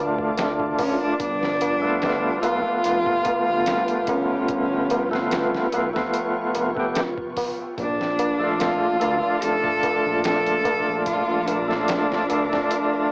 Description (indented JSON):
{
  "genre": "trip hop",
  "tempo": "73 BPM",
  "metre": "4/4",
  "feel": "swing 53% on 16ths",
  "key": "unclear",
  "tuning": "A4 = 441 Hz",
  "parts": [
    { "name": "overdriven tonewheel organ", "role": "accompaniment", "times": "0.0-13.1 s", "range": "A3 to G4", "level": "-26 LUFS", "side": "equal", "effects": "tremolo, cassette tape" },
    { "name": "string machine, cellos", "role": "sustained chords", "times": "0.0-13.1 s", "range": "F4 to D6", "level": "-34 LUFS", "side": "equal", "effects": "ensemble chorus, cassette tape" },
    { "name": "dark detuned saw bass", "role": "bass", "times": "0.0-12.5 s", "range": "D1 to D2", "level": "-36 LUFS", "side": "equal", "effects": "none" },
    { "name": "trip hop sampler-style drum kit", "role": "drums", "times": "0.2-12.9 s", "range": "hi-hat, kick drum, snare drum", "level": "-34 LUFS", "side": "equal", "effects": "none" },
    { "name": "tabla", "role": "percussion", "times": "0.2-13.1 s", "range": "none", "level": "-33 LUFS", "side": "equal", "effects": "none" },
    { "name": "clear cello", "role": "melody", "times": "0.8-13.1 s", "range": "C#4 to A4", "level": "-26 LUFS", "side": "equal", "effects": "cassette tape, tape echo" }
  ],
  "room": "light reverb",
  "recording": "home recording on cassette, small speaker sound",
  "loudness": "-23 LUFS",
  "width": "mono",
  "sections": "0.0-13.1 A section",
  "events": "none",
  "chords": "0.0 Dm; 1.2 G7; 7.8 Bbmaj7",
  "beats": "0.38 | 1.21 2.03 2.85 3.67 | 4.49 5.32 6.14 6.96 | 7.78 8.60 9.42 10.25 | 11.07 11.89 12.71"
}